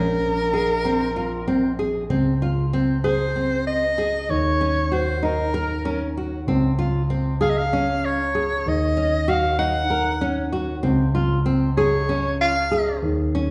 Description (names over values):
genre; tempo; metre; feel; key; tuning
contemporary instrumental, chamber music in an uneven meter; 192 BPM (eighths); 7/8; straight; unclear; A4 = 440 Hz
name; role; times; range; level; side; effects
mellow soprano saxophone; melody; 0.0-13.0 s; Bb4 to Gb5; -25 LUFS; equal; none
nylon-string guitar; arpeggios; 0.0-13.5 s; C4 to Bb4; -26 LUFS; equal; none
dark concert grand piano; bass; 0.0-13.5 s; Bb1 to Eb2; -26 LUFS; equal; none
room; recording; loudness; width
wet recital hall reverb, RT60 1.4 s; heard from further back in the room, nothing above 10.9 kHz; -22 LUFS; mono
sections
0.0-2.1 A section; 2.1-13.5 B section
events
none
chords
0.0 Bbm9; 2.1 Dbmaj7(no3); 4.3 Ebm7; 6.5 Dbmaj7; 8.7 Ebm7; 10.8 Dbmaj7